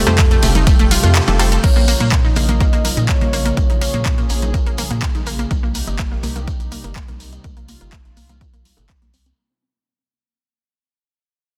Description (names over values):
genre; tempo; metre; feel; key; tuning
progressive house; 124 BPM; 4/4; straight; Bb dorian; A4 = 439 Hz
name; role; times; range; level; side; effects
soft octave-layered synth lead; melody; 0.0-4.4 s; A4 to Eb5; -29 LUFS; equal; chorus, phaser, sidechain pumping, digital delay
warm analog pad; sustained chords; 0.0-9.4 s; C3 to Bb4; -30 LUFS; equal; chorus, sidechain pumping
analog pluck; arpeggios; 0.0-9.3 s; Bb2 to A4; -26 LUFS; equal; chorus, sidechain pumping, digital delay
unison pluck; stabs; 0.0-1.6 s; A3 to C5; -27 LUFS; equal; sidechain pumping, digital delay
twinkling granular texture; texture; 0.0-1.6 s; G5; -38 LUFS; equal; none
round analog bass; bass; 0.1-9.3 s; F1 to Bb2; -22 LUFS; equal; sidechain pumping
house drum kit; drums; 0.1-9.4 s; crash cymbal, handclaps, hi-hat, ride cymbal, rim click; -25 LUFS; equal; overdrive
congas and bongos; percussion; 0.1-9.1 s; none; -31 LUFS; equal; none
shekere; percussion; 0.1-9.4 s; none; -32 LUFS; equal; none
electronic kick drum; drums; 0.2-9.0 s; none; -19 LUFS; equal; overdrive
room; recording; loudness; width
digital ambience; dense, heavily limited modern master; -16 LUFS; mono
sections
0.0-1.6 A section; 1.6-9.4 B section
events
drop 0.0-1.6; kick drops out 1.2-1.6; band accent 1.2; fade-out 1.6-9.4; filter sweep on analog synth bass 1.6-9.4; filter sweep on synth arpeggio sound 1.6-9.4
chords
0.0 Fadd9; 1.6 Bbm; 5.5 Cm7